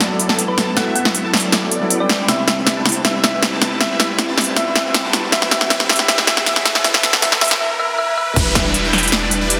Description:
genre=future bass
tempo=158 BPM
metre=4/4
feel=half-time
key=unclear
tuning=A4 = 444 Hz
part: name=felt-muted upright piano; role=accompaniment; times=0.0-8.4 s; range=C3 to D5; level=-28 LUFS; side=equal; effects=sidechain pumping
part: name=big bright polysynth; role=riff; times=0.0-9.6 s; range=F#3 to A5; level=-24 LUFS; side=equal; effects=chorus, phaser, sidechain pumping
part: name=warm 808-style bass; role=bass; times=0.0-9.6 s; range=E1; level=-27 LUFS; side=equal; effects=sidechain pumping, high-pass filter
part: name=big-room dance drum kit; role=drums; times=0.0-9.6 s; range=crash cymbal, hi-hat, snare drum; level=-18 LUFS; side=equal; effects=none
part: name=riser, swell and downlifter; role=sound effects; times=1.9-9.6 s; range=none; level=-29 LUFS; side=equal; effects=none
part: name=thumb-piano-like synth pluck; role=melody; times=0.5-8.3 s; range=B4 to F#5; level=-25 LUFS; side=equal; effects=chorus, sidechain pumping, digital delay
part: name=electronic kick drum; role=drums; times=8.4-8.6 s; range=none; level=-21 LUFS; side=equal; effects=none
room=wet lush hall reverb, RT60 1.8 s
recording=dense, heavily limited modern master, high-pass filter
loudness=-16 LUFS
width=mono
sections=0.0-8.4 A section; 8.4-9.6 B section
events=build-up 0.0-8.4; drum fill 0.0-7.6; filter sweep on analog polysynth 0.0-8.4; break 7.6-8.4; swell 7.6-8.4; drop 8.4-9.6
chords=0.0 B7sus4/E; 2.1 Cmaj7/E; 5.3 Cmaj7#11/E; 8.4 Em7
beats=0.01 0.39 | 0.77 1.15 1.53 1.91 | 2.29 2.67 3.05 3.43 | 3.81 4.19 4.57 4.95 | 5.33 5.71 6.08 6.46 | 6.84 7.22 7.60 7.98 | 8.36 8.74 9.12 9.50

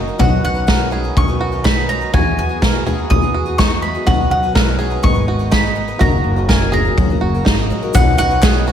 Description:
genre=indie folk with a building arrangement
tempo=124 BPM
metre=4/4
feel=straight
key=B major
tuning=A4 = 440 Hz
part: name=picked twelve-string acoustic guitar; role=accompaniment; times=0.0-8.7 s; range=G#2 to B4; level=-26 LUFS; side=left 3 dB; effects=slapback echo
part: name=warm concert grand piano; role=accompaniment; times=0.0-8.7 s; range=F#1 to E5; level=-29 LUFS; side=left 1 dB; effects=none
part: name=pedal harmonium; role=sustained chords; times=0.0-8.7 s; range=C#3 to G#4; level=-30 LUFS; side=right 1 dB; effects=none
part: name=bluegrass banjo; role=arpeggios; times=0.0-8.7 s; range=D#4 to A#4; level=-24 LUFS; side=right 5 dB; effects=slapback echo, digital delay
part: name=upright bass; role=bass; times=0.0-8.7 s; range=F#1 to E2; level=-21 LUFS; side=equal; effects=none
part: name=mandolin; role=melody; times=0.2-8.6 s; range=F#5 to D#6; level=-20 LUFS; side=left 1 dB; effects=slapback echo
part: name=unplugged drum kit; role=drums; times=0.2-8.5 s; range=kick drum, snare drum, toms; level=-16 LUFS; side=equal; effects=none
part: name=tube shaker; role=percussion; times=7.9-8.5 s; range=none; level=-32 LUFS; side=right 10 dB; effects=none
part: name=group handclap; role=percussion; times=8.4-8.5 s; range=none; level=-27 LUFS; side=left 4 dB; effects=none
room=moderate recital hall reverb, RT60 1.6 s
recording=big arena sound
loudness=-13 LUFS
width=side -9 dB against mid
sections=0.0-7.9 A section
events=none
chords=0.2 Badd9; 2.1 Eadd9; 4.1 Badd9; 5.0 G#m; 6.0 D#m/F#; 7.0 F#; 7.9 Badd9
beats=| 0.20 0.68 1.16 1.65 | 2.13 2.62 3.10 3.58 | 4.07 4.55 5.04 5.52 | 6.01 6.49 6.98 7.46 | 7.95 8.43

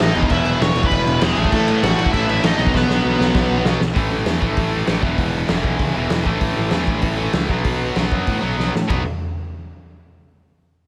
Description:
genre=punk rock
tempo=195 BPM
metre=4/4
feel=straight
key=unclear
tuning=A4 = 441 Hz
part: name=high-gain lead guitar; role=melody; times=0.0-3.6 s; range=G#3 to C#6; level=-24 LUFS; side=equal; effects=distortion, delay
part: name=fuzz guitar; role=riff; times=0.0-3.8 s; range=E2 to B3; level=-28 LUFS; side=equal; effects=none
part: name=overdriven electric guitar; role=riff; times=0.0-9.0 s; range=E2 to B3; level=-27 LUFS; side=equal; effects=none
part: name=tight distorted guitar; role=riff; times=0.0-9.0 s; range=E2 to B3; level=-27 LUFS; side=equal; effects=distortion
part: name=fuzz picked electric bass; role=bass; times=0.0-9.0 s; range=E1 to A2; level=-25 LUFS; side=equal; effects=overdrive
part: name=raw garage drum kit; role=drums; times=0.0-9.0 s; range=crash cymbal, hi-hat, kick drum, ride cymbal, snare drum, toms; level=-23 LUFS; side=equal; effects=none
room=light reverb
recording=none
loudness=-19 LUFS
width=mono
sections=0.0-4.0 A section; 4.0-8.9 B section; 8.9-10.1 C section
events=drum fill 2.7-4.0, 8.6-8.9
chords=0.1 E; 1.4 A5; 2.6 B; 4.0 A5; 5.0 E5; 6.3 A5; 7.5 B5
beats=| 0.29 0.60 0.90 1.21 | 1.51 1.82 2.12 2.42 | 2.73 3.04 3.34 3.65 | 3.95 4.26 4.56 4.87 | 5.18 5.49 5.79 6.10 | 6.41 6.72 7.03 7.34 | 7.64 7.95 8.26 8.57 | 8.88

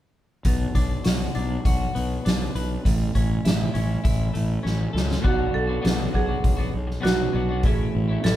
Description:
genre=psychedelic rock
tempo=100 BPM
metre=4/4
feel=straight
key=B dorian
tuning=A4 = 440 Hz
part: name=soft-mallet drum kit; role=drums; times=0.4-8.4 s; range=crash cymbal, hi-hat, kick drum, snare drum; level=-24 LUFS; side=equal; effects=none
part: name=twelve-string electric guitar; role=riff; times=0.5-8.4 s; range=A2 to B4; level=-30 LUFS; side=left 2 dB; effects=none
part: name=fuzz fingered electric bass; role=bass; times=0.5-8.4 s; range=A1 to C#2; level=-26 LUFS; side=equal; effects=overdrive
part: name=marimba with hard mallets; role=melody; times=5.2-8.4 s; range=F#4 to A4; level=-28 LUFS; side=right 5 dB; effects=none
room=light reverb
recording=band playing live in one room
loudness=-21 LUFS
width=side -13 dB against mid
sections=0.4-5.2 A section; 5.2-8.4 B section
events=drum fill 4.6-5.2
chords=0.4 Bm; 2.8 A; 5.2 Bm; 7.6 A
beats=| 0.44 1.04 1.65 2.25 | 2.85 3.45 4.05 4.64 | 5.25 5.84 6.44 7.04 | 7.64 8.24

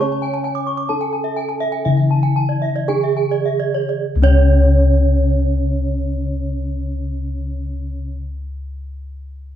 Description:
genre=Balinese gamelan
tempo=50-71 BPM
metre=4/4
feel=straight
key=C# pelog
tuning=A4 = 441 Hz
part: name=gamelan-type bronze metallophone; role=melody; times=0.0-8.1 s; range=C#4 to C#5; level=-24 LUFS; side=right 5 dB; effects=none
part: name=gamelan-type bronze metallophone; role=accompaniment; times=0.0-8.2 s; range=C#3 to C#4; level=-28 LUFS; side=equal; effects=none
part: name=gamelan-type bronze metallophone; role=arpeggios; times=0.0-8.1 s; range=C#5 to C#6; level=-26 LUFS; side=left 2 dB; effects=none
part: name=gamelan-type bossed gongs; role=bass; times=0.0-8.1 s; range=C#2 to C#5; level=-18 LUFS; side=left 2 dB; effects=none
part: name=gamelan-type bronze metallophone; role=arpeggios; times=0.1-8.1 s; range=C#5 to D6+20c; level=-25 LUFS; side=right 6 dB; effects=none
room=moderate large studio reverb, RT60 1.1 s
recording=band playing live in one room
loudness=-16 LUFS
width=side -10 dB against mid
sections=0.0-4.0 A section; 4.0-8.8 B section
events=slowing down 0.0-4.0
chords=none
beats=| 0.02 0.90 1.86 2.90 | 4.04 5.24 6.44 7.64

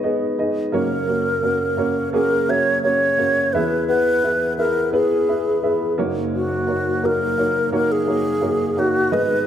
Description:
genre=pop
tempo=86 BPM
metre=4/4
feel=straight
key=unclear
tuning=A4 = 441 Hz
part: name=dark upright piano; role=accompaniment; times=0.0-9.5 s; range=F#1 to F#5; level=-21 LUFS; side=right 1 dB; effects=none
part: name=bright wooden-headed alto flute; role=melody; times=0.7-9.5 s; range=F#4 to C#5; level=-19 LUFS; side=equal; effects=none
room=wet large studio reverb, RT60 1.3 s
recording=none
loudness=-17 LUFS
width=side -9 dB against mid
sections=0.0-9.5 A section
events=none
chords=0.0 G#m; 0.7 F#; 3.5 E; 6.0 D#m7/F#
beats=0.04 | 0.74 1.44 2.13 2.83 | 3.53 4.23 4.93 5.62 | 6.32 7.02 7.72 8.42 | 9.12

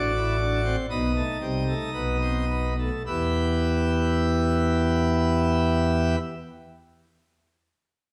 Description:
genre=classical, baroque-style 4-part fugue for pipe organ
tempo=52-63 BPM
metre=4/4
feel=straight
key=E minor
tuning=A4 = 440 Hz
part: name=pipe organ, plenum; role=solo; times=0.0-6.2 s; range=A1 to E5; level=-25 LUFS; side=equal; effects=none
room=wet recital hall reverb, RT60 1.4 s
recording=none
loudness=-24 LUFS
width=mono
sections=0.0-3.1 A section; 3.1-7.7 B section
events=slowing down 0.0-3.1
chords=0.0 B7sus4 (rootless); 0.9 B7; 3.1 Em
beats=0.90 1.94 | 3.05 4.21 5.37

